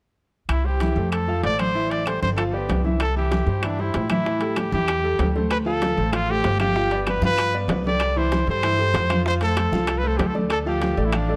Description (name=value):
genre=latin, salsa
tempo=192 BPM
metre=4/4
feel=straight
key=C major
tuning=A4 = 440 Hz
part: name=clear trumpet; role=melody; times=0.5-11.4 s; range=D4 to D5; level=-27 LUFS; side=equal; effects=slapback echo
part: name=upright bass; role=bass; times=0.5-11.4 s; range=G1 to A2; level=-27 LUFS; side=equal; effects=none
part: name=claves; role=percussion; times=0.5-11.3 s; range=none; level=-38 LUFS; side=equal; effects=none
part: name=congas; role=percussion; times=0.5-11.4 s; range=none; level=-32 LUFS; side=equal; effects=none
part: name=timbales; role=percussion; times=0.5-11.3 s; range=none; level=-35 LUFS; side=equal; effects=none
part: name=clear concert grand piano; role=accompaniment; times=0.6-11.4 s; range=E3 to F5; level=-29 LUFS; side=equal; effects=none
part: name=bongos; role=percussion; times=3.0-11.4 s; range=none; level=-36 LUFS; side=equal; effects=none
room=light reverb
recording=none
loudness=-22 LUFS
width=mono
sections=0.5-3.0 A section; 3.0-11.4 B section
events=none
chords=0.5 C; 1.1 F; 1.7 A5; 2.4 G7; 3.0 C; 4.3 A7(no3); 5.5 Dm7; 6.8 G7; 8.0 C6; 9.3 F; 10.5 Dm